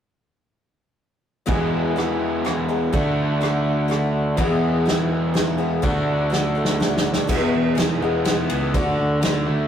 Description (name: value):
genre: folk rock and heartland rock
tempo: 124 BPM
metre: 3/4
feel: straight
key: E mixolydian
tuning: A4 = 440 Hz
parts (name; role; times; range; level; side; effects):
- picked swing-style acoustic guitar; accompaniment; 1.5-9.7 s; E2 to G#4; -24 LUFS; left 2 dB; none
- raw garage guitar; riff; 1.5-9.7 s; E2 to G#4; -24 LUFS; right 1 dB; overdrive
- picked electric bass; bass; 1.5-9.7 s; E1 to E2; -25 LUFS; equal; none
- natural country drum kit; drums; 1.5-9.3 s; crash cymbal, kick drum, ride cymbal, rim click, snare drum; -24 LUFS; right 1 dB; none
room: moderate studio reverb, RT60 0.6 s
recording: rough rehearsal-room recording, warm saturation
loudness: -18 LUFS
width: side -9 dB against mid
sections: 1.5-7.3 A section; 7.3-9.7 B section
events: drum fill 6.3-7.3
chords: 1.5 E; 2.9 D; 4.4 E; 5.8 D; 7.3 E; 8.7 D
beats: | 1.49 1.97 2.45 | 2.94 3.42 3.90 | 4.39 4.87 5.36 | 5.84 6.33 6.81 | 7.29 7.78 8.26 | 8.74 9.23